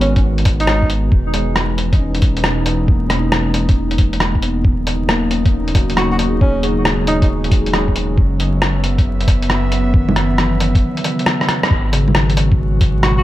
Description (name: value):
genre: future garage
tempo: 136 BPM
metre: 4/4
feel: swing 67% on 16ths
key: G# minor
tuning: A4 = 440 Hz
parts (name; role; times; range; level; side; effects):
- breathy alto saxophone; melody; 0.0-0.9, 6.0-7.3, 13.0-13.2 s; C#4 to F#4; -22 LUFS; right 1 dB; analog delay
- tine electric piano; accompaniment; 0.0-13.2 s; C#3 to G#4; -23 LUFS; left 2 dB; sidechain pumping, tape echo
- airy breathy pad; sustained chords; 0.0-13.2 s; B2 to E5; -21 LUFS; right 1 dB; chorus, sidechain pumping
- soft dub sub bass; bass; 0.0-13.2 s; D#1 to G#1; -19 LUFS; equal; sidechain pumping
- lo-fi sampler-style drum kit; drums; 0.0-13.1 s; bongos, hi-hat, rim click; -20 LUFS; equal; none
- electronic kick drum; drums; 0.2-12.9 s; none; -13 LUFS; equal; none
room: moderate spring reverb, RT60 1.4 s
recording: echo-heavy mix, vinyl crackle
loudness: -13 LUFS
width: side -15 dB against mid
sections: 0.0-11.7 A section; 11.7-13.2 B section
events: break 10.8-11.7; drum fill 11.4-11.7; band accent 11.6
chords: 0.0 G#m7; 1.1 Emaj7; 4.6 D#m7; 8.2 F#7sus4; 11.7 G#m7